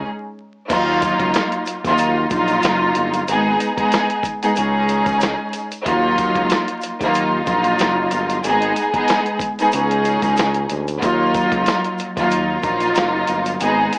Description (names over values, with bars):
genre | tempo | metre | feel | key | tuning
hip hop, boom-bap hip-hop | 93 BPM | 4/4 | swing 55% on 16ths | Eb minor | A4 = 443 Hz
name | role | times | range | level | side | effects
warm symphonic string section | accompaniment | 0.0-14.0 s | Gb3 to Ab4 | -19 LUFS | equal | cassette tape
smooth synth bass | bass | 0.0-13.9 s | Gb1 to Eb2 | -28 LUFS | equal | none
dusty soul sampler-style drum kit | drums | 0.7-14.0 s | crash cymbal, hi-hat, kick drum, snare drum | -26 LUFS | equal | overdrive
tube shaker | percussion | 0.7-14.0 s | none | -43 LUFS | equal | none
room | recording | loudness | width
light reverb | vinyl crackle, small speaker sound | -18 LUFS | mono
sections
0.7-14.0 A section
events
break 0.1-0.7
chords
0.1 N.C.; 0.7 Ebmadd9; 3.3 Abm; 4.6 Dbsus2; 5.9 Ebmadd9; 8.4 Abm; 9.7 Dbsus2; 11.0 Ebmadd9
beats
0.06 | 0.70 1.35 1.99 2.64 | 3.28 3.93 4.57 5.22 | 5.86 6.51 7.15 7.80 | 8.44 9.09 9.73 10.38 | 11.02 11.67 12.31 12.96 | 13.61